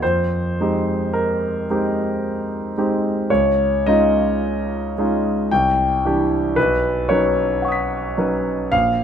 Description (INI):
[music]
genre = classical, impressionist solo piano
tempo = 55 BPM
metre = 3/4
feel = rubato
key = unclear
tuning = A4 = 440 Hz
[part]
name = clear concert grand piano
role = solo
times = 0.0-9.0 s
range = Bb1 to B6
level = -17 LUFS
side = equal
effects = none
[sound]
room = light reverb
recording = close, detailed microphones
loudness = -17 LUFS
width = side -8 dB against mid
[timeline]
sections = 0.0-9.0 A section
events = none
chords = 0.0 Fm11; 3.3 Dbadd9; 5.5 Cadd9; 6.6 Badd9